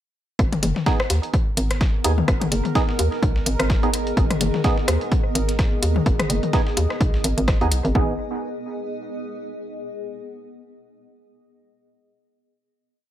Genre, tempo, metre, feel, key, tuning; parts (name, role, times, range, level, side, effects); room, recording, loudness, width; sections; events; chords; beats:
minimal techno; 127 BPM; 4/4; swing 57% on 16ths; G# minor; A4 = 439 Hz
hollow knocking FM bass; bass; 0.4-8.2 s; F#1 to D#2; -22 LUFS; equal; tube saturation, sidechain pumping
dusty soul sampler-style drum kit; drums; 0.4-7.9 s; hi-hat, snare drum; -35 LUFS; equal; sidechain pumping on hats, high-pass filter on hats, high-pass filter on snare, high-pass filter on room
electronic kick drum; drums; 0.4-8.1 s; -21 LUFS; equal
minimal click drum kit; percussion; 0.4-7.6 s; rim click, toms; -26 LUFS; left 3 dB; analog delay
bubbling stepped-filter texture; texture; 0.4-8.0 s; A#4; -34 LUFS; right 4 dB; chorus, built-in reverb, sidechain pumping
granular cloud pad; texture; 1.7-9.8 s; B3 to D#5; -30 LUFS; equal; built-in reverb, lush chorus, sidechain pumping
electronic hi-hat; drums; 0.5-7.8 s; -26 LUFS; left 1 dB
percussive organ stab; stabs; 0.9-8.1 s; B3 to G#4; -27 LUFS; right 4 dB; analog chorus, analog delay
light reverb, digital ambience; -19 LUFS; side -12 dB against mid
0.4-8.0 groove; 8.0-9.8 final chord
0.4 G#m
| 0.39 0.86 1.34 1.81 | 2.28 2.75 3.23 3.70 | 4.17 4.64 5.12 5.59 | 6.06 6.53 7.01 7.48 | 7.95 8.42 8.90 9.37